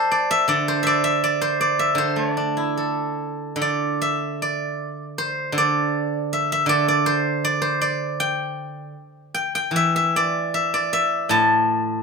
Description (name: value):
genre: chinese traditional, Chinese solo plucked strings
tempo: 73-82 BPM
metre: 2/4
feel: rubato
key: D shang mode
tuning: A4 = 441 Hz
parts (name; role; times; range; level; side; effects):
- steel-string zither; solo; 0.0-12.0 s; A2 to A5; -19 LUFS; equal; none
room: light reverb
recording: minimal, uncompressed stereo recording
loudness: -19 LUFS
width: side -4 dB against mid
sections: 0.0-3.6 A section; 3.6-12.0 B section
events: none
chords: none